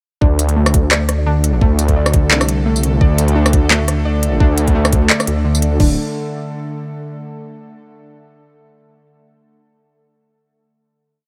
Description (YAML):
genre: half-time drum and bass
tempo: 172 BPM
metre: 4/4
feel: swing 57% on 16ths, half-time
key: unclear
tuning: A4 = 444 Hz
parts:
  - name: bowed-like drone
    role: sustained chords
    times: 1.2-6.0 s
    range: D3 to A4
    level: -25 LUFS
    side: equal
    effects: built-in reverb, sidechain pumping
  - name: warbly dusty pluck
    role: arpeggios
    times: 0.2-6.0 s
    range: D3 to D5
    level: -24 LUFS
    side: equal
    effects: chorus, delay
  - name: dark detuned saw bass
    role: bass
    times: 0.2-6.0 s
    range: D1 to D2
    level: -18 LUFS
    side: equal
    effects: none
  - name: electronic kick drum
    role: drums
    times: 0.2-5.9 s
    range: none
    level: -16 LUFS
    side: equal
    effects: none
  - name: organic electronic drum kit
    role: drums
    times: 0.4-5.9 s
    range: crash cymbal, handclaps, hi-hat, rim click, tambourine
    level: -19 LUFS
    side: equal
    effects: overdrive
room: digital ambience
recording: none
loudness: -15 LUFS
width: mono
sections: 0.2-5.8 drop; 5.8-7.2 final chord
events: drop 0.2-5.8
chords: 0.2 D5